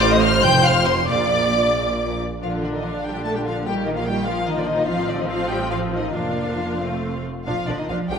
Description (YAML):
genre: quick classical-period movement for string orchestra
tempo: 88-100 BPM (dotted quarters)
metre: 6/8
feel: rubato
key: Bb major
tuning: A4 = 442 Hz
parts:
  - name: rich symphonic violin section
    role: melody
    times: 0.0-8.2 s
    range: D5 to G6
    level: -25 LUFS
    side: left 4 dB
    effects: none
  - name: warm symphonic violin section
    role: second line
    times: 0.0-8.2 s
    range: D4 to G5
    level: -26 LUFS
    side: left 2 dB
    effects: none
  - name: rich symphonic viola section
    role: accompaniment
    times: 0.0-8.2 s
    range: D3 to D5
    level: -24 LUFS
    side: right 1 dB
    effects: none
  - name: clear symphonic double bass section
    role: bass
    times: 0.0-8.2 s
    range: F1 to Bb1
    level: -26 LUFS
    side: right 2 dB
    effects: none
  - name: rich symphonic cello section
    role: bass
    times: 0.0-8.2 s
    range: F2 to A3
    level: -27 LUFS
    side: right 3 dB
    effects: none
room: wet scoring stage reverb, RT60 2.0 s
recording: minimal, uncompressed stereo recording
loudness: -19 LUFS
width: side -6 dB against mid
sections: 0.0-2.4 A section; 2.4-8.2 A section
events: none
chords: 0.4 F5; 1.1 Bb; 3.7 Ebadd9/Bb; 4.9 F/A; 6.2 Bb/F; 6.8 F; 7.5 Bb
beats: 0.43 | 1.08 1.75 | 2.42 3.05 | 3.66 4.28 | 4.88 5.51 | 6.15 6.80 | 7.46 8.09